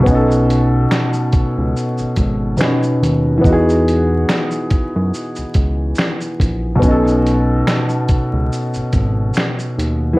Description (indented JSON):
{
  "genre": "lo-fi hip hop",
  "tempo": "71 BPM",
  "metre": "4/4",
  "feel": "swing 57% on 16ths",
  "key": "unclear",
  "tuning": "A4 = 440 Hz",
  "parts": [
    { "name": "felt-muted upright piano", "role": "accompaniment", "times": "0.0-10.2 s", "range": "B2 to B4", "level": "-16 LUFS", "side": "equal", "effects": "cassette tape, low-pass filter" },
    { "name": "fat analog bass", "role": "bass", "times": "0.0-10.2 s", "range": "G#1 to F#2", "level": "-18 LUFS", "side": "equal", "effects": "none" },
    { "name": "dusty soul sampler-style drum kit", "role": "drums", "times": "0.1-10.0 s", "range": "finger snaps, hi-hat, kick drum, shaker, snare drum", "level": "-18 LUFS", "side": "equal", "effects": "none" },
    { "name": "finger snaps", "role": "percussion", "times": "0.9-9.6 s", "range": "none", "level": "-35 LUFS", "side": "right 5 dB", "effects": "none" }
  ],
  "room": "moderate small room reverb, RT60 0.6 s",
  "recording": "worn, warbling old tape, cassette tape, vinyl crackle, warbly pitch drift",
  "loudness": "-14 LUFS",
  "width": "side -21 dB against mid",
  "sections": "0.1-10.2 A section",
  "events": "none",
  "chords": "0.1 B9; 3.4 Emaj9; 6.8 B9",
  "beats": "| 0.07 0.91 1.76 2.60 | 3.45 4.29 5.14 5.98 | 6.83 7.67 8.52 9.36"
}